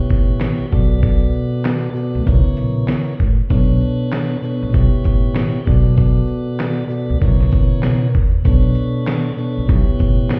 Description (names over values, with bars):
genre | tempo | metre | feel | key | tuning
hip hop, boom-bap hip-hop | 97 BPM | 4/4 | swing 62% on 16ths | B minor | A4 = 439 Hz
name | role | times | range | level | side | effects
tonewheel organ | accompaniment | 0.0-10.4 s | B2 to D5 | -23 LUFS | equal | stopped rotary speaker, cassette tape
upright bass | bass | 0.1-10.4 s | A1 to B2 | -20 LUFS | equal | none
dusty soul sampler-style drum kit | drums | 0.1-10.4 s | handclaps, hi-hat, kick drum, shaker, snare drum | -19 LUFS | equal | none
room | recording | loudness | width
little or no reverb | heard muffled through a wall, stone room reverb, EQ | -17 LUFS | mono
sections
0.0-8.5 A section; 8.5-10.4 B section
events
none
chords
0.0 A7; 0.7 Bm7; 2.3 Aadd9; 3.5 Bm7; 4.7 A7; 5.7 Bm7; 7.2 A#dim; 8.5 Bm7; 9.7 A7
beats
0.41 | 1.03 1.65 2.27 2.89 | 3.50 4.12 4.74 5.36 | 5.98 6.60 7.22 7.83 | 8.45 9.07 9.69 10.31